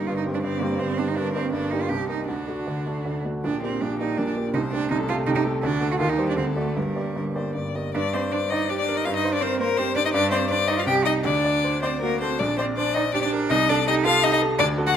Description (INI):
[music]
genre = quick classical-period movement for piano trio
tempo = 149-168 BPM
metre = 3/4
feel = rubato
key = G minor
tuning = A4 = 441 Hz
[part]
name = clear violin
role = melody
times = 0.0-15.0 s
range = F#4 to G5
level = -26 LUFS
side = left 8 dB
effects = none
[part]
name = clear cello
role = second line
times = 0.0-14.9 s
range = G3 to G4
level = -26 LUFS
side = right 6 dB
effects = none
[part]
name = clear baby grand piano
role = accompaniment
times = 0.0-15.0 s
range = G1 to Eb5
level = -25 LUFS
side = equal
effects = none
[sound]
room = light reverb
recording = close, detailed microphones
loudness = -21 LUFS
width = side -9 dB against mid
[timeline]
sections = 0.0-7.9 A section; 7.9-15.0 A section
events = none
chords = 0.1 C5/G; 1.2 Gm; 1.9 Cm7; 2.3 D; 3.4 Gm/Bb; 4.5 C5; 5.6 D; 6.0 Cm/Eb; 6.4 D; 6.8 Gm; 9.1 C5/G; 10.1 G5; 10.9 Cm; 11.2 D; 12.4 Gm/Bb; 13.5 Cm69; 14.6 D